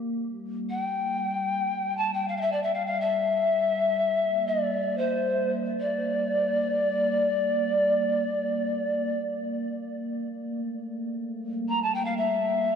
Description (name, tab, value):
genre	world meditative, free-time meditation music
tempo	free time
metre	none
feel	none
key	G dorian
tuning	A4 = 439 Hz
part	glass harmonica	texture	0.0-12.8 s	G3 to Bb3	-32 LUFS	right 1 dB	none
part	reedy pan flute	melody	0.7-12.8 s	C5 to Bb5	-25 LUFS	left 1 dB	diffuse ambient delay
room	wet cathedral reverb, RT60 5.5 s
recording	dark, warm production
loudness	-24 LUFS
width	side -7 dB against mid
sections	0.0-12.8 A section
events	none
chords	none